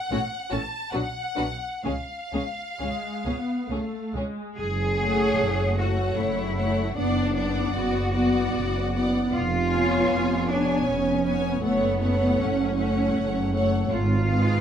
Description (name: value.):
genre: classical, slow romantic movement for string orchestra.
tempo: 61-80 BPM.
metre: 3/4.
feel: rubato.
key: F# minor.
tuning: A4 = 441 Hz.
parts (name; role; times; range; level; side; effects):
clear studio violin section; melody; 0.0-14.6 s; E#5 to A5; -34 LUFS; left 2 dB; none.
rich chamber violin section; second line; 0.1-14.6 s; C#4 to D5; -30 LUFS; right 1 dB; none.
warm symphonic viola section; accompaniment; 0.1-14.6 s; F#3 to D4; -28 LUFS; left 2 dB; none.
rich studio cello section; bass; 0.1-14.6 s; A2 to G#4; -27 LUFS; right 1 dB; none.
warm chamber double bass section; bass; 0.1-14.6 s; E#1 to C#2; -27 LUFS; right 1 dB; none.
room: light reverb.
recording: dark, warm production, faint mains hum.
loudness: -22 LUFS.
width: side -9 dB against mid.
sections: 0.0-4.6 A section; 4.6-14.6 B section.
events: none.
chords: 0.0 F#m/A; 0.9 Bm; 1.8 C#; 4.6 F#m; 7.0 Bm/F#; 9.3 C#7/E#; 11.6 F#m; 13.9 Fdim/Ab.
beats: 0.12 0.93 | 1.85 2.80 3.70 | 4.58 5.39 6.18 | 6.97 7.75 8.54 | 9.33 10.10 10.87 | 11.63 12.40 13.16 | 13.92.